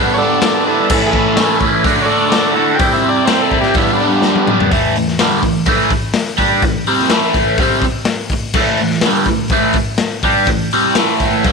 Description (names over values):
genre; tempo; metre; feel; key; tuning
garage rock duo or trio; 125 BPM; 4/4; straight; unclear; A4 = 440 Hz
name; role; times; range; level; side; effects
crunchy overdriven guitar; riff; 0.0-11.5 s; G2 to G4; -14 LUFS; right 1 dB; phaser
overdriven combo organ; melody; 0.1-4.7 s; G3 to G5; -18 LUFS; equal; none
raw garage drum kit; drums; 0.4-11.5 s; crash cymbal, hi-hat, kick drum, snare drum, toms; -17 LUFS; left 2 dB; none
room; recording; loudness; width
moderate echo chamber reverb, RT60 1.8 s, studio reverb; 1960s-style stereo; -12 LUFS; side -4 dB against mid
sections
0.0-4.7 A section; 4.7-11.5 B section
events
drum fill 4.2-4.7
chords
0.0 G; 0.9 A; 1.8 D; 2.8 C; 3.8 G; 4.7 A5